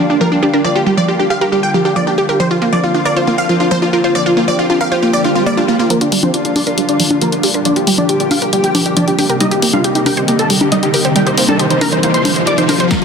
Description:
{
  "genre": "uplifting trance",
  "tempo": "137 BPM",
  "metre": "4/4",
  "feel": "straight",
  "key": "G minor",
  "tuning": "A4 = 439 Hz",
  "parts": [
    { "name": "supersaw stab", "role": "melody", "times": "0.0-13.0 s", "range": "Bb3 to D6", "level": "-16 LUFS", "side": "equal", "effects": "cassette tape, sidechain pumping, low-pass filter, ping-pong delay" },
    { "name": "wide unison pluck", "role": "second line", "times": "0.0-5.9 s", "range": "D4 to G5", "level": "-21 LUFS", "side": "left 1 dB", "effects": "none" },
    { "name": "lush unison pad", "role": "sustained chords", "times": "0.0-13.0 s", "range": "C3 to G4", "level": "-19 LUFS", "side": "left 1 dB", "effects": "chorus, sidechain pumping" },
    { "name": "wide unison pluck", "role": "arpeggios", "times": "0.0-13.0 s", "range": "F3 to C5", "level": "-17 LUFS", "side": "right 2 dB", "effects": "cassette tape, sidechain pumping, dub echo" },
    { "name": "swell and riser", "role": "sound effects", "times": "5.2-13.0 s", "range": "none", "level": "-20 LUFS", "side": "equal", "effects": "none" },
    { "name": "punchy analog drum machine", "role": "drums", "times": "5.9-13.0 s", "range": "congas, hi-hat, snare drum, tambourine", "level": "-17 LUFS", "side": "left 2 dB", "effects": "none" },
    { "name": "tight sequencer bass", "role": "bass", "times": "6.0-13.0 s", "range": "none", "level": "barely audible", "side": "none", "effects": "none" },
    { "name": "electronic kick drum", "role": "drums", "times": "12.9-13.0 s", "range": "none", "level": "-19 LUFS", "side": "left 1 dB", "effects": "distortion" }
  ],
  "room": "light reverb, digital ambience",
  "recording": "dense, heavily limited modern master",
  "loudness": "-11 LUFS",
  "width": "side -6 dB against mid",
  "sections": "0.0-5.9 A section; 5.9-13.0 B section",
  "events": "swell 5.2-5.9; build-up 5.9-13.0; riser 5.9-13.0; filter sweep on supersaw synth 5.9-13.0; filter sweep on synth arpeggio sound 5.9-13.0",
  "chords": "0.0 Gm7; 2.4 Bbadd9; 5.9 Gm7; 9.4 Cm7"
}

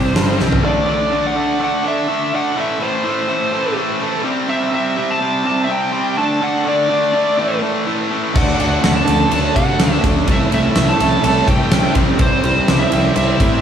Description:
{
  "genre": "hard rock",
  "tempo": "125 BPM",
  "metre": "4/4",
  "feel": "straight",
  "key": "unclear",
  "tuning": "A4 = 439 Hz",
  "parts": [
    { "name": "bluesy overdriven lead guitar", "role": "melody", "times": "0.0-13.6 s", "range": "C5 to A5", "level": "-20 LUFS", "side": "right 1 dB", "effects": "distortion, slapback echo, digital delay" },
    { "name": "crunchy overdriven guitar", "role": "riff", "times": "0.0-0.6, 8.3-13.6 s", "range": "G2 to F#4", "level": "-22 LUFS", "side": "right 1 dB", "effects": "spring reverb" },
    { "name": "high-gain distorted guitar", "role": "riff", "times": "0.0-13.6 s", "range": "G2 to D4", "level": "-19 LUFS", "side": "equal", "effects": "distortion, slapback echo" },
    { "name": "fuzz fingered electric bass", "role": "bass", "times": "0.0-0.6, 8.4-13.6 s", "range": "G1 to C3", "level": "-20 LUFS", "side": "equal", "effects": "overdrive" },
    { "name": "huge arena drum kit", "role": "drums", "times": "0.2-0.6, 8.4-13.5 s", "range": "crash cymbal, hi-hat, kick drum, ride cymbal, snare drum, toms", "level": "-17 LUFS", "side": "equal", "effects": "none" },
    { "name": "octave-fuzz lead guitar", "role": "second line", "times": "8.4-13.6 s", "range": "C4 to A4", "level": "-24 LUFS", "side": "right 4 dB", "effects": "none" }
  ],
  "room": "moderate lush hall reverb, RT60 1.7 s, small room ambience",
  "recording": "big arena sound",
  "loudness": "-14 LUFS",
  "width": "side -8 dB against mid",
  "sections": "0.6-13.6 A section",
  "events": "drum fill 0.4",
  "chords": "0.0 N.C.; 0.6 D5; 2.6 Am; 4.3 C5; 6.2 D5; 7.4 A5; 8.4 D; 10.3 Am/C; 12.0 C"
}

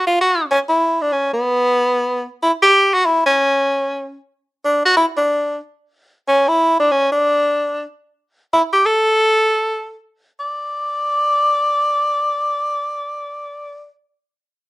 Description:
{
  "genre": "jazz",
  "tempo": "free time",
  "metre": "none",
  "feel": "none",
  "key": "D major",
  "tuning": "A4 = 440 Hz",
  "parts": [
    { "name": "bright tenor saxophone", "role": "solo", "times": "0.0-13.9 s", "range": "B3 to D5", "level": "-15 LUFS", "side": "equal", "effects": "cassette tape" }
  ],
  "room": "moderate studio reverb, RT60 0.7 s",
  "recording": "home recording on cassette",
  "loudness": "-14 LUFS",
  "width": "side -20 dB against mid",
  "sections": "0.5-8.2 A section; 8.2-10.4 B section; 10.4-13.1 C section",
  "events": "slowing down 8.2-10.4",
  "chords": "none"
}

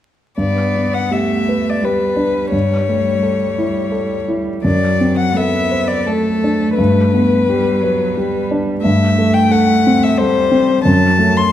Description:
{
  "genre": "classical, slow romantic movement for piano trio",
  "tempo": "81-90 BPM",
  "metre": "3/4",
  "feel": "rubato",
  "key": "G major",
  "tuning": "A4 = 441 Hz",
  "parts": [
    { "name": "clear violin", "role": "melody", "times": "0.4-11.5 s", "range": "A4 to C6", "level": "-18 LUFS", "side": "left 5 dB", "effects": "none" },
    { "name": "rich cello", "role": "second line", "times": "0.4-11.5 s", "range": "F#3 to B3", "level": "-19 LUFS", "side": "right 3 dB", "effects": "none" },
    { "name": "warm grand piano", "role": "accompaniment", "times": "0.4-11.5 s", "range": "F#2 to C5", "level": "-16 LUFS", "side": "equal", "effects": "none" }
  ],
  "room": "moderate scoring stage reverb, RT60 1.5 s",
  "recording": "dark, warm production, vinyl crackle",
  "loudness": "-13 LUFS",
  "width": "side -11 dB against mid",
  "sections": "0.4-11.5 A section",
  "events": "none",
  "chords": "0.4 G; 2.5 A7/G; 4.6 D7/F#; 6.8 G; 8.8 Am7/G; 10.9 D/F# (rootless)"
}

